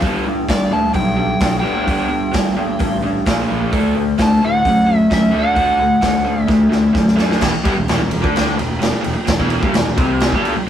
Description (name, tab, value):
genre	garage rock duo or trio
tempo	130 BPM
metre	4/4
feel	straight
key	E minor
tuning	A4 = 435 Hz
part	raw garage guitar	riff	0.0-10.6 s	E2 to D4	-17 LUFS	equal	overdrive
part	fuzz picked electric bass	bass	0.0-10.7 s	E1 to A2	-22 LUFS	equal	overdrive
part	raw garage drum kit	drums	0.0-10.5 s	crash cymbal, hi-hat, kick drum, ride cymbal, snare drum	-20 LUFS	equal	none
part	overdriven slide guitar	melody	0.5-6.9 s	D5 to A5	-19 LUFS	right 1 dB	none
room	moderate small room reverb, RT60 0.5 s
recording	rough rehearsal-room recording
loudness	-14 LUFS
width	side -10 dB against mid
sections	0.0-7.4 A section; 7.4-10.7 B section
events	drum fill 6.5-7.4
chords	0.0 G; 3.3 A#5; 3.7 D; 7.4 Em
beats	| 0.03 0.49 0.95 1.41 | 1.87 2.33 2.80 3.26 | 3.72 4.18 4.64 5.11 | 5.57 6.03 6.50 6.96 | 7.42 7.88 8.35 8.81 | 9.27 9.73 10.19 10.65